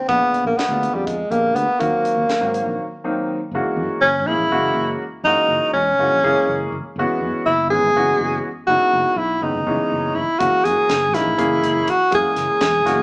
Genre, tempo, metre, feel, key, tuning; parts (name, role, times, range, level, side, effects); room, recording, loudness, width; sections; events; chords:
electric jazz fusion; 244 BPM (eighths); 7/8; straight; F# mixolydian from 3.5 s; A4 = 438 Hz
breathy tenor saxophone; melody; 0.0-13.0 s; G3 to G#4; -16 LUFS; equal
warm baby grand piano; accompaniment; 0.1-13.0 s; Bb2 to G#4; -23 LUFS; equal
fretless electric bass; bass; 0.1-13.0 s; E1 to Ab2; -29 LUFS; equal
crisp fusion drum kit; drums; 0.1-2.7, 10.4-13.0 s; hi-hat, kick drum, snare drum; -27 LUFS; equal
moderate large studio reverb, RT60 1.3 s; band playing live in one room, small speaker sound; -16 LUFS; side -27 dB against mid
0.0-3.5 A section; 3.5-13.0 B section
break 2.8-3.5
0.1 Bb7b9; 1.8 Ebm6; 3.5 F#9; 7.0 E69/F#; 8.7 C#m9/F#; 10.4 F#9